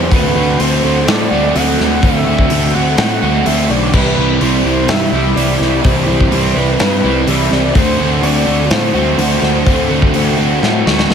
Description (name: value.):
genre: rock, shoegaze and dream pop.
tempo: 126 BPM.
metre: 4/4.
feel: straight.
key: unclear.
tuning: A4 = 440 Hz.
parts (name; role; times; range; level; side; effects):
mellow horn-like synth lead; melody; 0.0-11.1 s; B4 to F#5; -20 LUFS; equal; chorus, analog delay.
crunchy overdriven guitar; riff; 0.0-11.1 s; C3 to F#4; -14 LUFS; right 1 dB; lush chorus.
fuzz picked electric bass; bass; 0.0-11.1 s; B1 to A2; -16 LUFS; equal; overdrive.
big rock drum kit; drums; 0.1-11.1 s; crash cymbal, hi-hat, kick drum, snare drum; -17 LUFS; left 1 dB; none.
room: little or no reverb.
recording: none.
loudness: -11 LUFS.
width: side -7 dB against mid.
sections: 0.0-11.1 A section.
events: drum fill 10.6-11.1.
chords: 0.1 D7; 3.9 Cmaj7; 7.8 D7.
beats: | 0.12 0.60 1.08 1.55 | 2.03 2.51 2.99 3.46 | 3.94 4.42 4.89 5.37 | 5.85 6.33 6.80 7.28 | 7.76 8.23 8.71 9.19 | 9.66 10.14 10.62 11.10.